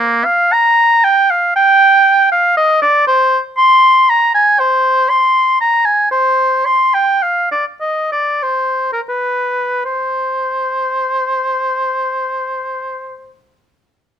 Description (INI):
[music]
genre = classical, baroque-style fantasia for unaccompanied oboe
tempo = 76-120 BPM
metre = 3/4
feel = rubato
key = C minor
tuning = A4 = 440 Hz
[part]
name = warm oboe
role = solo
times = 0.0-13.3 s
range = Bb3 to C6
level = -11 LUFS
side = equal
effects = none
[sound]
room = light reverb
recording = none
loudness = -11 LUFS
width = side -9 dB against mid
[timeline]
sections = 0.0-9.9 A section; 9.9-14.2 B section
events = slowing down 5.4-9.9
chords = none